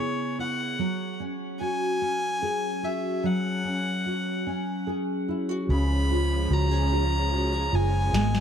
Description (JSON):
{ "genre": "six-eight pop ballad", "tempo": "49 BPM (dotted quarters)", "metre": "6/8", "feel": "straight", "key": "unclear", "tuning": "A4 = 441 Hz", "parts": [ { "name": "warm violin", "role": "melody", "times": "0.0-8.4 s", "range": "C#5 to B5", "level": "-30 LUFS", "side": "left 1 dB", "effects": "tape echo" }, { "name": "nylon-string guitar", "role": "accompaniment", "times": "0.0-8.4 s", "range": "C#3 to G#4", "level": "-28 LUFS", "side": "equal", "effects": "double-tracked left and right" }, { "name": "warm studio string section", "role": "sustained chords", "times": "5.7-8.4 s", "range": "E#3 to C#4", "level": "-34 LUFS", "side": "equal", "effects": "none" }, { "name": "vintage muted fingered electric bass", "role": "bass", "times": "5.7-8.4 s", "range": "F#1 to C#2", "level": "-24 LUFS", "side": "equal", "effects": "none" }, { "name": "electronic snare drum", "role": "drums", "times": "8.1-8.4 s", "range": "none", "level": "-27 LUFS", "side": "left 3 dB", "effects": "overdrive" } ], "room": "studio reverb", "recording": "dark, warm production", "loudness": "-24 LUFS", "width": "side -8 dB against mid", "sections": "0.0-5.7 A section; 5.7-8.4 B section", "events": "drum fill 8.1", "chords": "0.0 C#m7; 0.8 F#sus2; 5.7 C#" }